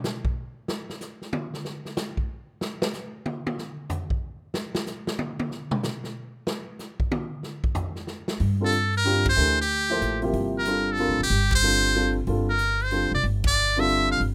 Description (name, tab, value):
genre	modal jazz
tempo	186 BPM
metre	3/4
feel	swing 64% on 8ths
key	G dorian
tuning	A4 = 441 Hz
part	swinging big-band drum kit	drums	0.0-14.3 s	hi-hat, kick drum, ride cymbal, snare drum, toms	-32 LUFS	equal	none
part	upright bass	bass	8.4-14.3 s	F1 to G2	-28 LUFS	equal	none
part	dark upright piano	accompaniment	8.6-14.2 s	C3 to C5	-29 LUFS	equal	none
part	trumpet with metal mute	melody	8.7-14.2 s	G4 to F5	-25 LUFS	equal	none
room	light reverb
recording	none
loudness	-26 LUFS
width	mono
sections	0.0-8.4 A section; 8.4-14.3 B section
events	drum solo 0.0-8.4; band accent 9.2, 11.5, 13.4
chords	0.0 N.C.; 8.4 Gm11